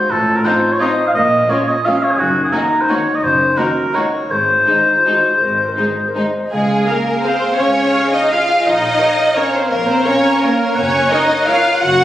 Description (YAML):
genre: classical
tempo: 152-187 BPM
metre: 3/4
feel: rubato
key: Db major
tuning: A4 = 439 Hz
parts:
  - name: mellow clarinet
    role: second line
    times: 0.0-12.0 s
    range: Db4 to Eb5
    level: -24 LUFS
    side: equal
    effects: none
  - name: warm oboe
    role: second line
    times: 0.0-12.0 s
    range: Gb4 to Gb5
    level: -16 LUFS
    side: equal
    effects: none
  - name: clear studio cello section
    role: bass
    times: 0.1-12.0 s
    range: Gb2 to Gb4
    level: -19 LUFS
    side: right 1 dB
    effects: none
  - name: rich studio double bass section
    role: bass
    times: 0.1-12.0 s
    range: Gb1 to Db2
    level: -27 LUFS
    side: right 1 dB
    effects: none
  - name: rich studio violin section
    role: second line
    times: 0.4-12.0 s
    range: Db4 to Gb5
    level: -22 LUFS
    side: left 1 dB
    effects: none
  - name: rich studio viola section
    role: accompaniment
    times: 0.4-11.6 s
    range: Ab3 to F5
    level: -26 LUFS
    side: equal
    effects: none
  - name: mellow French horn section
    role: sustained chords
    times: 0.4-12.0 s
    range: Eb3 to F5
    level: -26 LUFS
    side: left 2 dB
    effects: none
  - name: rich studio violin section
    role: melody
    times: 0.5-12.0 s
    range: Eb4 to Gb5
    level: -22 LUFS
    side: left 1 dB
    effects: none
  - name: mellow hollow flute section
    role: second line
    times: 6.5-12.0 s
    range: Ab5 to Bb5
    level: -25 LUFS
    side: equal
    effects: none
room: wet scoring stage reverb, RT60 1.7 s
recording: recorded on a phone in the room, studio reverb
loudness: -12 LUFS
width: side -13 dB against mid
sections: 0.0-6.5 A section; 6.5-12.0 B section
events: none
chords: 0.1 F7/A; 1.1 Bbm; 2.2 Ebm/Gb; 4.3 Ab; 6.5 Db; 8.7 Bbm; 10.8 Gb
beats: | 0.11 0.45 0.81 | 1.15 1.49 1.85 | 2.19 2.53 2.89 | 3.23 3.58 3.95 | 4.31 4.68 5.07 | 5.42 5.78 6.16 | 6.52 6.87 7.24 | 7.59 7.94 8.31 | 8.65 9.00 9.37 | 9.71 10.06 10.43 | 10.76 11.11 11.47 | 11.82